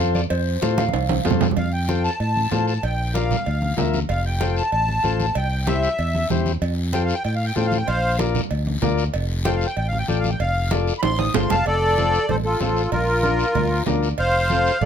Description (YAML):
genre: latin, cumbia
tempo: 190 BPM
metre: 4/4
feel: straight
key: F major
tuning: A4 = 440 Hz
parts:
  - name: mellow electric guitar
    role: second line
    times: 0.0-1.2, 13.2-14.1 s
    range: Bb4 to F5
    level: -28 LUFS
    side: right 3 dB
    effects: none
  - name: overdriven combo organ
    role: accompaniment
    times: 0.0-14.7 s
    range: C4 to E5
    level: -26 LUFS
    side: left 7 dB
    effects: none
  - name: fingered electric bass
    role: bass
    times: 0.0-14.9 s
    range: F1 to A2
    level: -23 LUFS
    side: equal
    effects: none
  - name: congas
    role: percussion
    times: 0.1-14.9 s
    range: none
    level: -27 LUFS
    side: right 4 dB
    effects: none
  - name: guiro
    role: percussion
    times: 0.2-14.9 s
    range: none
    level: -35 LUFS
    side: left 5 dB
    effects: none
  - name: cowbell and timbales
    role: percussion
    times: 0.3-14.9 s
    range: none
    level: -29 LUFS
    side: right 8 dB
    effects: none
  - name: accordion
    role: melody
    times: 1.6-14.9 s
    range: F4 to Eb6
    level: -22 LUFS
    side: equal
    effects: light tremolo tuning
room: light reverb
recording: close, detailed microphones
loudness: -19 LUFS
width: side -8 dB against mid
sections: 0.0-1.6 A section; 1.6-11.7 B section; 11.7-14.9 C section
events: clean electric guitar solo 0.0-1.6; drum fill 0.8-1.6, 11.0-11.7; accordion solo 1.6-11.7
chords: 0.0 F; 2.8 Bb; 4.1 F; 5.4 C; 6.6 F; 7.9 Bb; 9.1 F; 12.9 Bb; 14.2 F